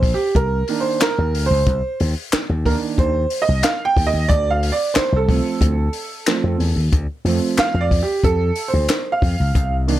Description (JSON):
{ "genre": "funk", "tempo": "91 BPM", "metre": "4/4", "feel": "straight", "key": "unclear", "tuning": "A4 = 440 Hz", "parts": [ { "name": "clear upright piano", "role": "stabs", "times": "0.0-10.0 s", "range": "Eb3 to G5", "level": "-20 LUFS", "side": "right 4 dB", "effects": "none" }, { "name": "slap bass with an envelope filter", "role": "bass", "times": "0.0-10.0 s", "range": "Bb1 to F2", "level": "-19 LUFS", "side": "left 1 dB", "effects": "none" }, { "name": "compact cocktail drum kit", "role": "drums", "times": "0.0-10.0 s", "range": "handclaps, hi-hat, kick drum, snare drum", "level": "-21 LUFS", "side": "left 1 dB", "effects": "none" }, { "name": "group handclap", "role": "percussion", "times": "1.0-9.0 s", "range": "none", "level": "-25 LUFS", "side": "left 3 dB", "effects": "none" } ], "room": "light reverb", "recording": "none", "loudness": "-16 LUFS", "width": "side -13 dB against mid", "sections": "0.0-10.0 A section", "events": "upright piano solo 0.0-10.0", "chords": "0.0 Cm9; 4.3 Dm7" }